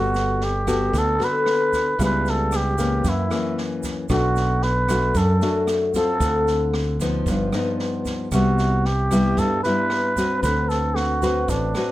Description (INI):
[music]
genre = bossa nova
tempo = 114 BPM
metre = 4/4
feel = straight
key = G major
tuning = A4 = 443 Hz
[part]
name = trumpet with cup mute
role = melody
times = 0.0-11.9 s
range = D4 to B4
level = -23 LUFS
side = right 1 dB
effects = none
[part]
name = nylon-string guitar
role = accompaniment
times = 0.0-11.9 s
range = F#2 to B4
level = -22 LUFS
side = left 2 dB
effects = none
[part]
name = fingered electric bass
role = bass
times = 0.0-11.7 s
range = G1 to G2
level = -23 LUFS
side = right 1 dB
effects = none
[part]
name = open jazz drum kit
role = drums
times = 0.1-11.9 s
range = kick drum, rim click, snare drum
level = -31 LUFS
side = right 1 dB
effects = none
[part]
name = egg shaker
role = percussion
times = 0.1-11.9 s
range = none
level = -40 LUFS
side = right 7 dB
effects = none
[sound]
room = light reverb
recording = dark, warm production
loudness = -19 LUFS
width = side -15 dB against mid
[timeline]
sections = 0.0-11.9 A section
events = none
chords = 0.0 Gmaj9; 2.0 C#m7b5; 3.0 F#7; 4.1 Bm7; 6.2 Dm7; 7.3 Gaug7; 8.3 Cmaj7; 10.4 D6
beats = 0.41 0.94 1.46 | 1.99 2.52 3.04 3.57 | 4.10 4.63 5.15 5.68 | 6.21 6.74 7.26 7.79 | 8.32 8.84 9.37 9.90 | 10.43 10.95 11.48